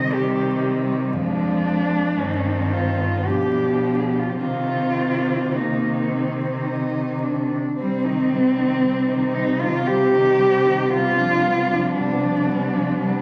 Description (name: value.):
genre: classical, lyrical piece for cello ensemble.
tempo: 51-60 BPM.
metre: 3/4.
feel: rubato.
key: C minor.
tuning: A4 = 439 Hz.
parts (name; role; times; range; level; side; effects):
warm cello; melody; 0.0-13.2 s; C4 to Eb5; -24 LUFS; equal; none.
rich cello; second line; 0.0-13.2 s; G3 to Eb4; -29 LUFS; equal; none.
rich cello; accompaniment; 0.0-13.2 s; Eb3 to G3; -30 LUFS; equal; none.
warm cello; bass; 0.0-13.2 s; F2 to C3; -27 LUFS; equal; none.
room: wet recital hall reverb, RT60 1.4 s.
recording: vinyl crackle.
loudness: -21 LUFS.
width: mono.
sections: 0.0-7.8 A section; 7.8-13.2 A section.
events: none.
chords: 0.0 Cm; 1.1 Ddim/F; 2.2 Cm/G; 3.3 G7/B; 4.4 Cm; 10.9 G7/C.